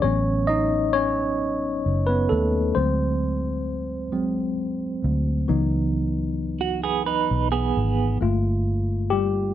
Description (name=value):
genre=R&B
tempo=44 BPM (dotted quarters)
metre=6/8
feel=straight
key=unclear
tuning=A4 = 437 Hz
part: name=tine electric piano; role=accompaniment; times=0.0-9.5 s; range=E3 to D#5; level=-24 LUFS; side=moving between left 4 dB and right 2 dB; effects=auto-pan
part: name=vintage muted fingered electric bass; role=bass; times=0.0-9.5 s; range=F#1 to D#2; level=-25 LUFS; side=equal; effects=none
part: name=clean electric guitar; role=second line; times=6.6-8.2 s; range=B3 to B4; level=-23 LUFS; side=right 9 dB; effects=tremolo
room=light reverb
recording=none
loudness=-21 LUFS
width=side -11 dB against mid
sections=0.0-9.5 A section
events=tine electric piano solo 0.0-9.5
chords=0.0 A69; 2.7 D7#11; 5.5 C#m11; 8.2 Gm9